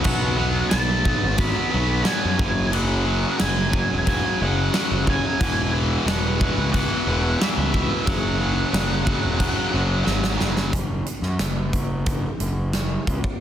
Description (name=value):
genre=quiet-loud alternative rock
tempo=90 BPM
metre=4/4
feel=straight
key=unclear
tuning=A4 = 438 Hz
part: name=octave-fuzz lead guitar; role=melody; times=0.0-10.0 s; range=E5 to B5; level=-28 LUFS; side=right 2 dB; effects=distortion
part: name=high-gain distorted guitar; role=riff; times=0.0-10.7 s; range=E2 to B3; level=-24 LUFS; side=equal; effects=distortion
part: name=big rock drum kit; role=drums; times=0.0-13.4 s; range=crash cymbal, hi-hat, kick drum, snare drum, splash cymbal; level=-24 LUFS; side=equal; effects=none
part: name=fuzz picked electric bass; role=bass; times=0.1-13.2 s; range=E1 to F#2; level=-24 LUFS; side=equal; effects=overdrive
room=little or no reverb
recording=dense, heavily limited modern master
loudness=-19 LUFS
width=side -10 dB against mid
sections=0.0-10.7 A section; 10.7-13.4 B section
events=drum fill 10.1-10.7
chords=0.0 B5; 2.4 F#sus2; 5.4 Esus2; 8.1 F#5; 10.7 N.C.